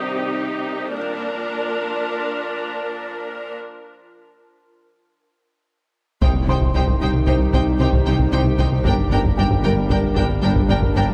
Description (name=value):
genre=cinematic, hybrid orchestral and electronic film score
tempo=114 BPM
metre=5/4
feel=straight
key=C minor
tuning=A4 = 441 Hz
part: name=rich symphonic viola section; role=accompaniment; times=0.0-11.0 s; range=D4 to Bb4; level=-30 LUFS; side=equal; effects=none
part: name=warbly tape-like pad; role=sustained chords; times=0.0-11.1 s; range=Eb3 to C5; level=-30 LUFS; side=equal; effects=chorus, built-in reverb
part: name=rich symphonic cello section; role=bass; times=0.0-11.0 s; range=G2 to C3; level=-30 LUFS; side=equal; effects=none
part: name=felt-muted upright piano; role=texture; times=0.0-1.0, 6.5-11.1 s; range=D4 to C6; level=-36 LUFS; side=equal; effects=tape echo
part: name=warm symphonic violin section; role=melody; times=6.2-11.0 s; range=G5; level=-31 LUFS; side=equal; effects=none
part: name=rich symphonic violin section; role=second line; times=6.2-11.0 s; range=Bb4 to C5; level=-32 LUFS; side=equal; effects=none
part: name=dark French horn section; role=sustained chords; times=6.2-11.1 s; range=G3 to Eb4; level=-31 LUFS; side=equal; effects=none
part: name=rubbery square bass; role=riff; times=6.2-11.1 s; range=C2 to G3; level=-25 LUFS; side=equal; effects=none
part: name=clear symphonic double bass section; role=bass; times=6.2-11.0 s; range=G1 to C2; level=-28 LUFS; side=equal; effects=none
part: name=dark detuned saw bass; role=bass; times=6.2-11.1 s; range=G1 to C2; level=-26 LUFS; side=equal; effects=none
part: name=solo taiko drums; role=drums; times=6.2-11.1 s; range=none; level=-25 LUFS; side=equal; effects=none
part: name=impact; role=sound effects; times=6.2-8.9 s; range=none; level=-31 LUFS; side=equal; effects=none
room=moderate concert hall reverb, RT60 2.1 s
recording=high-pass filter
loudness=-20 LUFS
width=mono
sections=0.0-6.2 A section; 6.2-11.1 B section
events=build-up 0.0-6.2; filter sweep 0.0-6.2; break 3.6-6.2; impact 6.2-8.9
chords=0.0 Cm; 1.0 Bb; 6.2 Cm; 8.9 Gm